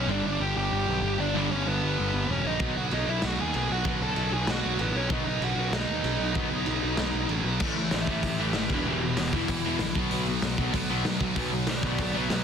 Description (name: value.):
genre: punk rock.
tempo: 192 BPM.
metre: 4/4.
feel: straight.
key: unclear.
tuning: A4 = 440 Hz.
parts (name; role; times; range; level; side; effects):
high-gain lead guitar; melody; 0.0-12.4 s; B3 to A5; -31 LUFS; right 1 dB; distortion.
high-gain distorted guitar; riff; 0.0-12.4 s; E2 to B3; -31 LUFS; right 1 dB; distortion.
fuzz picked electric bass; bass; 0.0-12.4 s; E1 to D#2; -31 LUFS; equal; overdrive.
crunchy overdriven guitar; riff; 0.1-12.4 s; E2 to B3; -34 LUFS; right 11 dB; none.
distorted electric guitar; riff; 0.1-12.4 s; E2 to B3; -33 LUFS; left 12 dB; distortion.
raw garage drum kit; drums; 2.6-12.4 s; crash cymbal, hi-hat, kick drum, snare drum; -31 LUFS; equal; none.
room: little or no reverb.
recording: dense, heavily limited modern master.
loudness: -25 LUFS.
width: side -7 dB against mid.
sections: 0.0-7.6 A section; 7.6-12.4 B section.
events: half time 0.0-7.6; lead electric guitar solo 7.6-12.4.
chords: 0.1 G; 2.6 B; 7.6 A5; 8.7 E5; 10.0 B5.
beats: | 0.09 0.41 0.72 1.03 | 1.35 1.66 1.98 2.29 | 2.60 2.92 3.23 3.54 | 3.86 4.17 4.48 4.79 | 5.11 5.42 5.73 6.04 | 6.36 6.67 6.98 7.29 | 7.61 7.92 8.23 8.55 | 8.86 9.17 9.48 9.80 | 10.11 10.43 10.74 11.05 | 11.37 11.68 11.99 12.31.